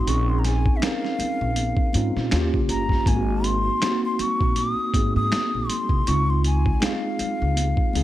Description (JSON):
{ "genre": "R&B, neo-soul", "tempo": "80 BPM", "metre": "4/4", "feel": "swing 58% on 16ths", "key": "Db major", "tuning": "A4 = 442 Hz", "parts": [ { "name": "mellow hollow jazz flute", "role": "melody", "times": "0.0-8.0 s", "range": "Fb5 to Eb6", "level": "-27 LUFS", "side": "left 1 dB", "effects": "slapback echo" }, { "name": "mellow tine electric piano", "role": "accompaniment", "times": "0.0-8.0 s", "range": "Ab3 to Bb4", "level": "-26 LUFS", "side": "right 1 dB", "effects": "medium stereo tremolo" }, { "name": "upright bass", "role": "bass", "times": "0.0-8.0 s", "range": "G1 to Bb2", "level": "-23 LUFS", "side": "equal", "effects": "none" }, { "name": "boom bap sampler-style drum kit", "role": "drums", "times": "0.1-8.0 s", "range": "finger snaps, hi-hat, kick drum, snare drum", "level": "-24 LUFS", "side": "equal", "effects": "none" }, { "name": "congas", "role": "percussion", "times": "0.4-8.0 s", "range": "none", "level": "-36 LUFS", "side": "left 1 dB", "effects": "none" } ], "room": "little or no reverb", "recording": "none", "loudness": "-20 LUFS", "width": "side -14 dB against mid", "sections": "0.0-8.0 A section", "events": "none", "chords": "0.1 Bbm11; 2.3 Eb9; 3.1 Ab9; 6.1 Dbmaj9" }